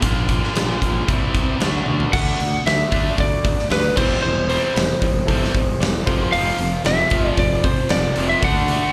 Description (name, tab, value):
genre	classic rock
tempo	114 BPM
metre	4/4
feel	straight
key	unclear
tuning	A4 = 440 Hz
part	mellow tonewheel organ	sustained chords	0.0-8.9 s	Bb3 to F5	-39 LUFS	equal	none
part	overdriven electric guitar	riff	0.0-8.9 s	F2 to D4	-31 LUFS	equal	none
part	overdriven electric guitar	riff	0.0-8.9 s	F2 to F#4	-28 LUFS	equal	slapback echo
part	fuzz fingered electric bass	bass	0.0-8.8 s	E1 to D2	-26 LUFS	equal	overdrive
part	big rock drum kit	drums	0.0-8.8 s	crash cymbal, hi-hat, kick drum, snare drum, toms	-24 LUFS	equal	none
part	lightly driven lead guitar	melody	2.1-8.9 s	B4 to F#5	-24 LUFS	equal	slapback echo
part	barky reed electric piano	accompaniment	2.1-8.8 s	E4 to B5	-33 LUFS	equal	slapback echo
part	tight distorted guitar	riff	6.3-8.9 s	F2 to D4	-32 LUFS	equal	none
room	light reverb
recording	live gig heard through the venue's PA, club reverb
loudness	-19 LUFS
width	mono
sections	0.0-2.1 A section; 2.1-8.9 B section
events	drum fill 1.9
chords	0.0 Bb; 1.1 C; 1.6 D; 4.0 C/E; 6.1 F; 8.4 D